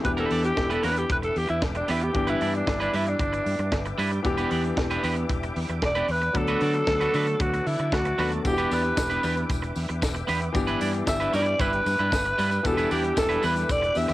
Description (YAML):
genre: disco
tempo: 114 BPM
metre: 4/4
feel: straight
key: E minor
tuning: A4 = 441 Hz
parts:
  - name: clear grand piano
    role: accompaniment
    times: 0.0-14.1 s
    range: E3 to A4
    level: -31 LUFS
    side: left 3 dB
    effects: cassette tape
  - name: electric guitar at the edge of break-up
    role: accompaniment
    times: 0.0-14.1 s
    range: G3 to D5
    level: -29 LUFS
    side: right 4 dB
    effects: cassette tape
  - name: tonewheel organ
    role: sustained chords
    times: 0.0-14.1 s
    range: B4 to D6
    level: -37 LUFS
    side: equal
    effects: chorus vibrato, slow rotary speaker, cassette tape
  - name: tight funk drum kit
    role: drums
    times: 0.0-14.1 s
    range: hi-hat, kick drum, snare drum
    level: -30 LUFS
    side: equal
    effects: cassette tape
  - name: growling alto saxophone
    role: melody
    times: 0.1-14.1 s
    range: D4 to E5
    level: -26 LUFS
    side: equal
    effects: tape echo
  - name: fingered electric bass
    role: bass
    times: 0.1-14.1 s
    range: E1 to D3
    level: -30 LUFS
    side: equal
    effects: none
  - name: tambourine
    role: percussion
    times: 8.5-14.1 s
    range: none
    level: -42 LUFS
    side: left 5 dB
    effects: none
room: light reverb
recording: home recording on cassette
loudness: -22 LUFS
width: side -16 dB against mid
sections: 0.0-14.1 A section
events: alto saxophone solo 0.0-14.1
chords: 0.0 Em7; 2.1 G6; 4.2 Em7; 6.3 Bm7/D; 8.4 Em7; 10.5 G6; 12.6 Em7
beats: | 0.05 0.57 1.10 1.62 | 2.15 2.67 3.20 3.73 | 4.25 4.78 5.30 5.83 | 6.35 6.88 7.40 7.92 | 8.45 8.97 9.50 10.02 | 10.55 11.07 11.60 12.12 | 12.64 13.17 13.69